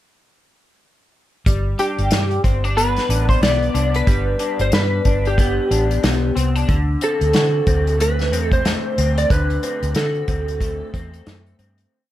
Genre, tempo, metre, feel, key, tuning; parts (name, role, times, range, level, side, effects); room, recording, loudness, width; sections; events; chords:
indie pop, bedroom pop; 92 BPM; 4/4; swing 60% on 16ths; G major; A4 = 440 Hz
electric guitar through a small old amp; accompaniment; 1.5-12.1 s; D3 to F#4; -25 LUFS; left 4 dB; analog chorus, warbly pitch drift, plate reverb
vintage muted fingered electric bass; bass; 1.5-11.8 s; G1 to D3; -20 LUFS; equal
unplugged drum kit; drums; 1.5-11.9 s; hi-hat, kick drum, snare drum; -21 LUFS; equal
electric slide guitar; melody; 1.8-11.6 s; G4 to D5; -21 LUFS; right 1 dB; ensemble chorus, plate reverb, analog delay
light reverb; -16 LUFS; side -13 dB against mid
1.5-11.9 verse
fade-out 9.3-11.9
1.5 G; 6.7 D7